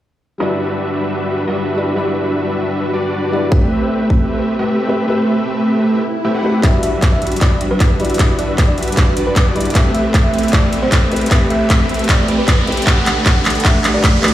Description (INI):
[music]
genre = future bass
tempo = 154 BPM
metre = 4/4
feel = half-time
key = E minor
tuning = A4 = 441 Hz
[part]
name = felt-muted upright piano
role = accompaniment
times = 0.4-14.3 s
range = G3 to F#5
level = -22 LUFS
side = left 1 dB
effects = sidechain pumping, digital delay
[part]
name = dense compressed supersaw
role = riff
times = 0.4-14.3 s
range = G3 to F#5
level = -18 LUFS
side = equal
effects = cassette tape, sidechain pumping, low-pass filter
[part]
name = electronic kick drum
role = drums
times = 3.5-4.2, 6.6-14.1 s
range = none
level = -14 LUFS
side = equal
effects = small room ambience
[part]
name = swell and riser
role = sound effects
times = 6.0-14.3 s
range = none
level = -26 LUFS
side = equal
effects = none
[part]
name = thumb-piano-like synth pluck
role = melody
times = 6.6-14.2 s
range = B4 to F#5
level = -23 LUFS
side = right 1 dB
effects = chorus, sidechain pumping, digital delay
[part]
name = warm 808-style bass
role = bass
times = 6.6-14.3 s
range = none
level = barely audible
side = none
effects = none
[part]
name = big-room dance drum kit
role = drums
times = 6.6-14.3 s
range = handclaps, hi-hat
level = -19 LUFS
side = equal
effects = low-pass filter on snare, small room ambience, low-pass filter on hats
[sound]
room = light reverb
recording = played on a big sound system in a bare room, stone room reverb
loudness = -13 LUFS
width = side -13 dB against mid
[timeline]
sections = 0.4-6.6 A section; 6.6-14.3 B section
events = swell 6.0-6.6; build-up 6.6-14.3; drum fill 6.6-14.3; riser 6.6-14.3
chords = 0.4 Em9; 3.5 Am9; 6.6 Em9; 9.8 Am9; 12.9 Gmaj9/B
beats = | 0.40 0.79 1.18 1.57 | 1.96 2.35 2.74 3.13 | 3.52 3.91 4.30 4.69 | 5.08 5.47 5.86 6.25 | 6.63 7.02 7.41 7.80 | 8.19 8.58 8.97 9.36 | 9.75 10.14 10.53 10.92 | 11.31 11.70 12.09 12.48 | 12.87 13.26 13.65 14.04